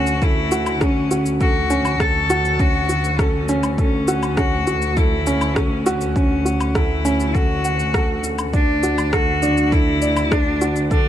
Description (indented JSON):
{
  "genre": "piano and strings electronica",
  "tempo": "101 BPM",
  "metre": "4/4",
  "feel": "straight",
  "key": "unclear",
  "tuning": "A4 = 440 Hz",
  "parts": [
    { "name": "clear cello", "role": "melody", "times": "0.0-11.1 s", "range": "C#4 to A4", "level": "-22 LUFS", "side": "left 2 dB", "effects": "none" },
    { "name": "dark upright piano", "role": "riff", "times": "0.0-11.1 s", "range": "C#4 to F#5", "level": "-22 LUFS", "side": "right 1 dB", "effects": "ping-pong delay" },
    { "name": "dark chamber double bass section", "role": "bass", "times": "0.0-11.1 s", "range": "D2", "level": "-23 LUFS", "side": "equal", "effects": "sidechain pumping" },
    { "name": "electronic shaker, woodblock and rim click", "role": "drums", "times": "0.1-11.0 s", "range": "none", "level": "-27 LUFS", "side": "left 1 dB", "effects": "overdrive" },
    { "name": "electronic kick drum", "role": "drums", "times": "0.2-11.0 s", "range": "none", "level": "-19 LUFS", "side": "equal", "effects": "overdrive" }
  ],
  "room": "light reverb",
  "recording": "none",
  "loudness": "-16 LUFS",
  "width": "side -11 dB against mid",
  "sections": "0.0-11.1 A section",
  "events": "none",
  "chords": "0.0 F#m/D; 8.5 D"
}